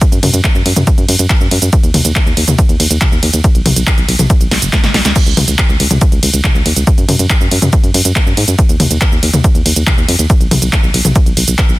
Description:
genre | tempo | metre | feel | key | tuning
uplifting trance | 140 BPM | 4/4 | straight | unclear | A4 = 440 Hz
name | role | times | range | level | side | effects
electronic kick drum | drums | 0.0-11.7 s | none | -11 LUFS | equal | overdrive
punchy analog drum machine | drums | 0.0-11.8 s | crash cymbal, handclaps, hi-hat, ride cymbal, shaker, snare drum, toms | -14 LUFS | equal | overdrive, sidechain pumping on hats, sidechain pumping on perc, sidechain pumping on toms, sidechain pumping on cymbals
solid FM bass | bass | 0.1-11.8 s | Gb1 to Ab2 | -14 LUFS | equal | sidechain pumping
room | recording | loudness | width
digital ambience | dense, heavily limited modern master | -9 LUFS | side -18 dB against mid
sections
0.0-5.2 A section; 5.2-11.8 A section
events
drop 0.0-5.2, 5.2-11.8; drum fill 4.5-5.2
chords
none

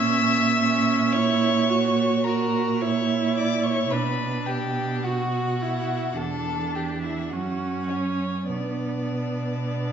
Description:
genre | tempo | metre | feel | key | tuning
classical, slow romantic movement for string quartet | 49-56 BPM | 4/4 | rubato | B minor | A4 = 440 Hz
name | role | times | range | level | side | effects
warm violin | melody | 0.0-9.9 s | C#5 to E6 | -29 LUFS | left 6 dB | none
warm violin | second line | 0.0-9.9 s | C#4 to E5 | -29 LUFS | left 2 dB | none
clear viola | accompaniment | 0.0-9.9 s | B3 to F#4 | -28 LUFS | right 4 dB | none
rich cello | bass | 0.0-9.9 s | E2 to B2 | -25 LUFS | right 5 dB | none
room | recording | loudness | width
wet recital hall reverb, RT60 1.7 s | nothing above 7.6 kHz | -22 LUFS | side -8 dB against mid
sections
0.0-9.9 A section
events
none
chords
0.0 F#7/A#; 3.9 Bm; 6.2 A7sus4/E; 7.3 F#5; 8.5 Bm

